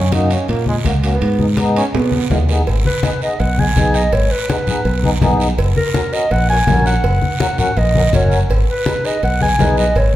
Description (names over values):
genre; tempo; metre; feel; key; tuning
latin, cumbia; 165 BPM; 4/4; straight; G# minor; A4 = 440 Hz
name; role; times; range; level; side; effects
bright trombone; second line; 0.0-2.5 s; G#3 to D#4; -22 LUFS; right 4 dB; none
fingered electric bass; bass; 0.0-10.1 s; F#1 to B2; -16 LUFS; equal; none
mellow accordion; accompaniment; 0.1-9.8 s; A#3 to B4; -22 LUFS; left 2 dB; none
congas; percussion; 0.1-10.1 s; none; -20 LUFS; left 2 dB; none
guiro; percussion; 0.1-10.2 s; none; -29 LUFS; right 6 dB; none
timbales and cowbell; percussion; 0.1-10.1 s; none; -26 LUFS; right 4 dB; none
dark clarinet; melody; 2.9-10.2 s; A#4 to G#5; -18 LUFS; equal; none
room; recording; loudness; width
wet large studio reverb, RT60 1.1 s; heard from further back in the room; -13 LUFS; side -14 dB against mid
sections
0.0-2.7 A section; 2.7-10.2 B section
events
trombone solo 0.0-2.7; drum fill 1.9-2.7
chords
0.0 F#; 1.2 G#m; 5.6 F#; 8.5 G#m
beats
0.12 0.49 0.85 | 1.22 1.58 1.95 2.31 | 2.67 3.04 3.40 3.77 | 4.13 4.49 4.86 5.22 | 5.58 5.95 6.31 6.68 | 7.04 7.41 7.77 8.13 | 8.50 8.86 9.23 9.59 | 9.96